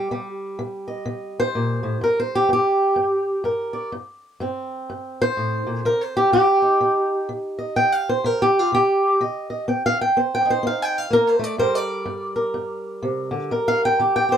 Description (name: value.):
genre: acoustic country blues, solo or duo.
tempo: 125 BPM.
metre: 4/4.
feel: swing 60% on 8ths.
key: unclear.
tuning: A4 = 440 Hz.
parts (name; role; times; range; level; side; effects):
fingerpicked swing-style acoustic guitar; solo; 0.0-14.4 s; G2 to G5; -19 LUFS; equal; none.
room: light reverb.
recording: dark, warm production.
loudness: -19 LUFS.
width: side -8 dB against mid.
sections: 0.0-14.4 A section.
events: steel-string acoustic guitar solo 0.0-14.4.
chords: 0.1 Cm; 2.0 Gm; 5.8 Cm; 11.6 Gm; 13.5 Eb.